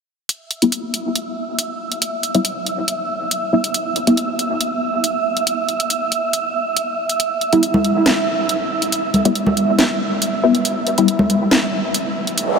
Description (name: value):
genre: deep dubstep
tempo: 139 BPM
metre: 4/4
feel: half-time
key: E minor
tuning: A4 = 440 Hz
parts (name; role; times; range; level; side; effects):
- garage drum kit; drums; 0.3-12.5 s; hi-hat, snare drum; -19 LUFS; equal; none
- wind-like tuned noise texture; texture; 1.0-12.6 s; E5; -22 LUFS; right 4 dB; built-in reverb
- filtered dub chord stab; stabs; 0.6-4.2, 7.5-11.1 s; G3 to E4; -20 LUFS; left 1 dB; phaser, wide subtle chorus, dub echo
- congas; percussion; 7.7-11.3 s; none; -21 LUFS; equal; dub echo
- noise sweep; sound effects; 12.4-12.6 s; none; -16 LUFS; right 5 dB; none
room: wet huge ambient reverb, RT60 8.5 s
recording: dreamy mix soaked in reverb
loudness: -16 LUFS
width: side -6 dB against mid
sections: 0.3-12.6 A section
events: filter sweep on synth stab 0.3-12.6; noise sweep 12.4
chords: none